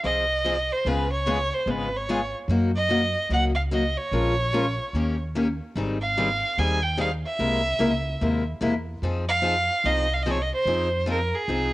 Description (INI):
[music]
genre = acoustic string swing (jazz manouche)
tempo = 147 BPM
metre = 4/4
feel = swing 62% on 8ths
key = F minor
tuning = A4 = 440 Hz
[part]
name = bright violin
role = melody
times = 0.0-11.7 s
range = Ab4 to Ab5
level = -24 LUFS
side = right 2 dB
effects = cassette tape
[part]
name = picked steel-string acoustic guitar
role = accompaniment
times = 0.0-11.7 s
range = C3 to Bb4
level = -27 LUFS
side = left 2 dB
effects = none
[part]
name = upright bass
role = bass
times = 0.0-11.7 s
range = Ab1 to Gb2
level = -28 LUFS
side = equal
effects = none
[sound]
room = light reverb, studio reverb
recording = home recording on cassette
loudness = -22 LUFS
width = side -17 dB against mid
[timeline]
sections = 0.0-11.7 A section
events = none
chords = 0.0 Fm7; 0.8 Db7; 2.5 Gb6; 4.1 Bbm7; 4.9 Eb7; 5.8 Abmaj7; 7.4 C7alt; 9.0 Fm7